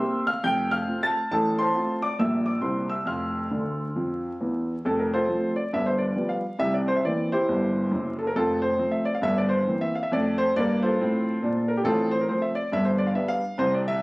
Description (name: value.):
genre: jazz, stride piano.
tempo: 137 BPM.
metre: 4/4.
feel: swing 60% on 8ths.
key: F major.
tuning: A4 = 441 Hz.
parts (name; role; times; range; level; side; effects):
warm grand piano; solo; 0.0-14.0 s; F1 to A6; -22 LUFS; equal; none.
room: moderate club reverb, RT60 0.5 s.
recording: recorded on a phone in the room, studio ambience, vinyl crackle.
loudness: -22 LUFS.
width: side -23 dB against mid.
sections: 0.0-4.8 A section; 4.8-14.0 A section.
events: grand piano fill 3.5-4.8.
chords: 0.4 F; 1.3 F/A; 2.2 Gm/Bb; 2.6 C7; 3.1 F5; 4.8 F; 5.7 G7; 6.6 C7; 8.4 F; 9.2 C7/G; 10.1 F; 11.9 F/A; 12.7 G.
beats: 0.00 0.44 0.89 | 1.32 1.77 2.21 2.65 | 3.09 3.53 3.97 4.41 | 4.84 5.29 5.72 6.16 | 6.60 7.04 7.48 7.92 | 8.36 8.80 9.23 9.67 | 10.11 10.55 10.99 11.43 | 11.87 12.30 12.74 13.18 | 13.62.